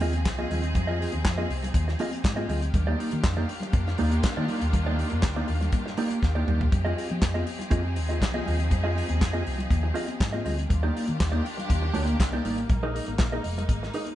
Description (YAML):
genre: disco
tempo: 121 BPM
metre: 4/4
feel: straight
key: F dorian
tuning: A4 = 440 Hz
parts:
  - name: mellow electric guitar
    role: accompaniment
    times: 0.0-14.1 s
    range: Bb3 to Eb5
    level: -30 LUFS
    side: right 2 dB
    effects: none
  - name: clear studio string section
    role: sustained chords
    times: 0.0-14.2 s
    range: Eb3 to Ab4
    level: -34 LUFS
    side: left 1 dB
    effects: none
  - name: picked electric bass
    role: bass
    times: 0.0-13.9 s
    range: F1 to F3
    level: -28 LUFS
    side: equal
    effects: none
  - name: damped 70s drum kit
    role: drums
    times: 0.0-14.2 s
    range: handclaps, hi-hat, kick drum, snare drum, toms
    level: -27 LUFS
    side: equal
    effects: none
  - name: congas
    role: percussion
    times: 0.1-14.2 s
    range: none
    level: -37 LUFS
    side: left 3 dB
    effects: none
room: light reverb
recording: band playing live in one room, nothing above 10.6 kHz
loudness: -24 LUFS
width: side -13 dB against mid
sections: 0.0-14.2 A section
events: drum fill 6.2-6.7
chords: 0.0 Fm7; 2.7 Ebmaj7; 6.7 Fm7; 10.7 Ebmaj7; 12.7 Bb7sus4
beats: 0.26 | 0.75 1.25 1.75 2.25 | 2.74 3.24 3.74 4.24 | 4.73 5.23 5.73 6.22 | 6.72 7.22 7.72 8.21 | 8.71 9.21 9.71 10.21 | 10.70 11.20 11.70 12.20 | 12.69 13.19 13.69